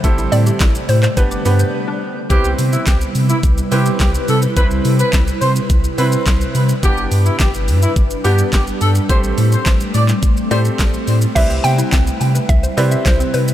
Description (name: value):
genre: dance-pop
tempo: 106 BPM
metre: 4/4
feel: straight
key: C major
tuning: A4 = 440 Hz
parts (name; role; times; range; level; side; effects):
- hollow square pluck; melody; 0.0-1.7, 10.5-13.5 s; B4 to G5; -22 LUFS; equal; chorus, diffuse ambient delay
- bright grand piano; accompaniment; 0.0-13.5 s; A3 to B4; -24 LUFS; right 3 dB; sidechain pumping
- ethereal airy pad; sustained chords; 0.0-13.5 s; C3 to B4; -22 LUFS; equal; ensemble chorus, built-in reverb, phaser, sidechain pumping
- hollow square pluck; arpeggios; 0.0-2.0, 11.4-13.3 s; G3 to G6; -28 LUFS; left 3 dB; chorus, sidechain pumping, diffuse ambient delay
- warm sub bass; bass; 0.0-13.5 s; G1 to C3; -16 LUFS; equal; sidechain pumping
- pop drum kit; drums; 0.0-13.5 s; crash cymbal, handclaps, hi-hat, kick drum, shaker, snare drum; -17 LUFS; equal; none
- mellow horn section; melody; 2.3-10.6 s; E4 to D5; -22 LUFS; equal; sidechain pumping, diffuse ambient delay
room: light reverb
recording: none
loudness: -13 LUFS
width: side -12 dB against mid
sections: 0.0-2.3 A section; 2.3-11.4 B section; 11.4-13.5 A section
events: break 1.7-2.3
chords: 0.0 Am7; 1.2 G; 2.3 Cmaj7; 6.8 G; 9.1 Am7; 11.4 Cmaj7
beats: | 0.04 0.60 1.17 1.74 | 2.30 2.87 3.44 4.00 | 4.57 5.13 5.70 6.26 | 6.83 7.40 7.96 8.53 | 9.10 9.66 10.23 10.79 | 11.36 11.93 12.49 13.06